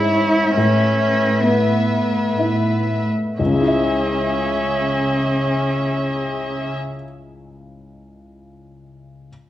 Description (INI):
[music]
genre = cinematic, emotional film score for orchestra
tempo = 57-74 BPM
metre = 3/4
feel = rubato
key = C# minor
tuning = A4 = 435 Hz
[part]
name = warm cello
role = melody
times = 0.0-6.7 s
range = B3 to E4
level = -22 LUFS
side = right 2 dB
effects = none
[part]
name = dark studio violin section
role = second line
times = 0.0-6.8 s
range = G#4 to E5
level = -23 LUFS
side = left 4 dB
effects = none
[part]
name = felt-muted upright piano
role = accompaniment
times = 0.0-9.3 s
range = C#2 to E5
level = -22 LUFS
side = left 2 dB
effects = none
[part]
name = dark studio cello section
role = bass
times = 0.0-6.7 s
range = G#2 to C#3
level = -23 LUFS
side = right 1 dB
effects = none
[sound]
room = wet recital hall reverb, RT60 1.3 s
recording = worn, warbling old tape, cassette tape, warbly pitch drift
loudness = -16 LUFS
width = side -13 dB against mid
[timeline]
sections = 0.0-3.4 A section; 3.4-6.3 B section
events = slowing down 0.0-3.4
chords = 0.0 C#m/G#; 0.6 Asus2; 3.4 C#m